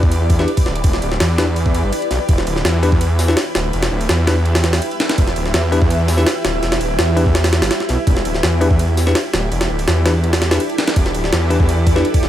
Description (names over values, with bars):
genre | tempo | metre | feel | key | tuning
drum and bass, jungle | 166 BPM | 4/4 | straight | E minor | A4 = 444 Hz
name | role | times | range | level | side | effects
granular cloud pad | sustained chords | 0.0-12.3 s | E4 to E5 | -23 LUFS | right 1 dB | built-in reverb
detuned saw bass | bass | 0.0-12.3 s | D1 to E2 | -17 LUFS | equal | none
jungle sampler-style drum kit | drums | 0.0-12.3 s | hi-hat, kick drum, ride cymbal, snare drum | -18 LUFS | equal | small room reverb
bell-like tine electric piano | stabs | 0.4-12.1 s | D4 to B4 | -23 LUFS | left 3 dB | dub echo
room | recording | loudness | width
little or no reverb | faint mains hum | -14 LUFS | side -12 dB against mid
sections
0.0-12.3 A section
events
none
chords
0.0 Em7